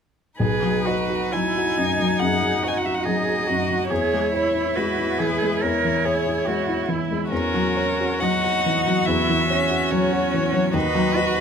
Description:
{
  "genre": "classical, slow romantic movement for piano quartet",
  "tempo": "70 BPM",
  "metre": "4/4",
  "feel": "uneven beats, rubato",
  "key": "B major",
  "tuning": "A4 = 440 Hz",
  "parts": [
    { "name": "rich violin", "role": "melody", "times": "0.4-11.4 s", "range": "A#4 to G#5", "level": "-24 LUFS", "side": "left 3 dB", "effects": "none" },
    { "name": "rich cello", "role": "second line", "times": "0.4-11.4 s", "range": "C#4 to A#4", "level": "-25 LUFS", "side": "right 6 dB", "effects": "none" },
    { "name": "warm violin", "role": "second line", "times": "0.4-11.4 s", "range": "D#4 to F#4", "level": "-29 LUFS", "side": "left 1 dB", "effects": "none" },
    { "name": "warm baby grand piano", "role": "accompaniment", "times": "0.4-11.4 s", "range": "B1 to D#5", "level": "-23 LUFS", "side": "left 2 dB", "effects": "none" }
  ],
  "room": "light reverb",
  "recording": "close, detailed microphones",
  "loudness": "-19 LUFS",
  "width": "side -7 dB against mid",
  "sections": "0.4-11.4 A section",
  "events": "none",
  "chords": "0.4 B; 3.9 C#m/E; 7.3 F#7/E; 10.7 B/D#",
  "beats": "| 0.39 1.33 2.20 3.05 | 3.90 4.76 5.63 6.47 | 7.31 8.21 9.07 9.92 | 10.75"
}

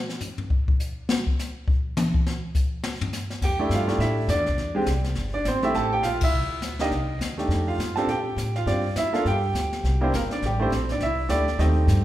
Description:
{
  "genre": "jazz piano trio",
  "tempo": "206 BPM",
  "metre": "4/4",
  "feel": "swing 60% on 8ths",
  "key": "F major",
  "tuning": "A4 = 440 Hz",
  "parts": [
    { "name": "jazz brush drum kit", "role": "drums", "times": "0.1-12.0 s", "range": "brushed snare drum, crash cymbal, hi-hat, kick drum, ride cymbal, snare drum, toms", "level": "-27 LUFS", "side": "left 1 dB", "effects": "none" },
    { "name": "clear baby grand piano", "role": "melody", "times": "3.4-12.0 s", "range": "G3 to A5", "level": "-24 LUFS", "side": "right 1 dB", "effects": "none" },
    { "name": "upright bass", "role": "bass", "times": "3.4-12.0 s", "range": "G1 to Bb2", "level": "-25 LUFS", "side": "equal", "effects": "none" }
  ],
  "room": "wet recital hall reverb, RT60 1.3 s",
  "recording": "recorded in a church or concert hall",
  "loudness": "-22 LUFS",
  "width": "side -14 dB against mid",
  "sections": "0.0-3.4 A section; 3.4-12.0 B section",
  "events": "drum solo 0.0-3.4; band accent 6.2",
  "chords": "0.0 N.C.; 3.4 Fmaj13; 4.6 E7alt; 5.8 Am7; 6.9 Cm; 7.5 F13; 8.1 Bb6; 9.3 G5; 9.8 C7sus2; 10.4 C13/A",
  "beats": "0.21 0.50 0.80 | 1.09 1.38 1.67 1.96 | 2.25 2.54 2.83 3.13 | 3.42 3.71 4.00 4.29 | 4.58 4.88 5.17 5.46 | 5.75 6.04 6.33 6.62 | 6.92 7.21 7.50 7.79 | 8.08 8.38 8.67 8.96 | 9.25 9.54 9.84 10.13 | 10.42 10.71 11.00 11.29 | 11.59 11.88"
}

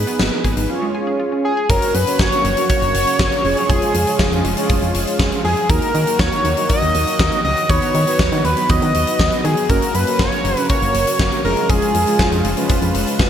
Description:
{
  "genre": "synth-pop",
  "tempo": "120 BPM",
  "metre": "4/4",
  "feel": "straight",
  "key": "F# major",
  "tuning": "A4 = 441 Hz",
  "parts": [
    { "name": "mellow synth brass", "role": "accompaniment", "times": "0.0-13.3 s", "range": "G#3 to C#5", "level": "-22 LUFS", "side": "right 1 dB", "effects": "chorus" },
    { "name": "analog pluck", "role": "arpeggios", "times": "0.0-1.7 s", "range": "G#3 to G#5", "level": "-27 LUFS", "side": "left 1 dB", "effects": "chorus, digital delay" },
    { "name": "solid FM bass", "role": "bass", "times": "0.0-13.3 s", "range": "E#1 to D#3", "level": "-21 LUFS", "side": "equal", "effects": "none" },
    { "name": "huge arena drum kit", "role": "drums", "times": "0.1-13.3 s", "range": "hi-hat, kick drum, snare drum", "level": "-19 LUFS", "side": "equal", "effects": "gated reverb" },
    { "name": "octave-doubled lead", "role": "melody", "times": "1.4-12.7 s", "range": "G#4 to D#5", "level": "-19 LUFS", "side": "equal", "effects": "chorus, digital delay" },
    { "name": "warm analog pad", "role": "sustained chords", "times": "1.7-13.3 s", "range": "C#3 to F#4", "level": "-26 LUFS", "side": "equal", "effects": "chorus" }
  ],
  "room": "moderate plate reverb, RT60 2.6 s",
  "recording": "bright 1980s-style digital production",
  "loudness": "-14 LUFS",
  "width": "side -9 dB against mid",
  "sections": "0.0-1.7 A section; 1.7-13.3 B section",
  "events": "none",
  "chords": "0.0 G#madd9; 0.7 C#; 1.7 F#; 3.4 C#/E#; 5.7 D#m; 7.7 B/D#; 9.7 F#; 11.4 C#/E#",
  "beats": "0.20 0.69 1.20 | 1.70 2.19 2.69 3.19 | 3.69 4.20 4.70 5.20 | 5.70 6.20 6.70 7.20 | 7.70 8.20 8.70 9.20 | 9.70 10.20 10.70 11.20 | 11.70 12.20 12.70 13.20"
}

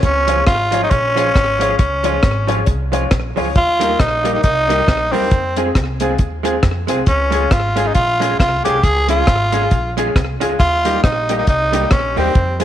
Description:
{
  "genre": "ska",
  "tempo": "136 BPM",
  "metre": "4/4",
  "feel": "swing 58% on 8ths",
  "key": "unclear",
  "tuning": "A4 = 440 Hz",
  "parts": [
    { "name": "growling tenor saxophone", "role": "melody", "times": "0.0-12.6 s", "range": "C4 to Ab4", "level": "-17 LUFS", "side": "equal", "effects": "none" },
    { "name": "upright bass", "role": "bass", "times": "0.0-12.6 s", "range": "Ab1 to F2", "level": "-22 LUFS", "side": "equal", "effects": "none" },
    { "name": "deep reggae drum kit", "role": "drums", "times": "0.0-12.6 s", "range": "hi-hat, kick drum, rim click", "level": "-16 LUFS", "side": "equal", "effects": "slapback echo" },
    { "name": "vintage hollow-body jazz guitar", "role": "accompaniment", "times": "0.3-12.6 s", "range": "F3 to Ab4", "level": "-23 LUFS", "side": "right 9 dB", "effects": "slapback echo" },
    { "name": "bright upright piano", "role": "stabs", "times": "0.3-12.6 s", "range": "G3 to Db5", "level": "-23 LUFS", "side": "left 10 dB", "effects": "none" }
  ],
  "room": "light reverb",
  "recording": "1960s-style stereo with parts hard left and right",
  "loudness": "-13 LUFS",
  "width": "side -11 dB against mid",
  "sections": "0.0-12.6 A section",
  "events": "none",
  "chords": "0.0 Db; 3.6 Eb; 5.3 Fm; 7.1 Db; 10.6 Eb",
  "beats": "| 0.04 0.47 0.92 1.35 | 1.79 2.23 2.67 3.12 | 3.56 4.00 4.43 4.88 | 5.32 5.75 6.20 6.63 | 7.08 7.51 7.96 8.39 | 8.84 9.28 9.71 10.15 | 10.60 11.04 11.47 11.91 | 12.36"
}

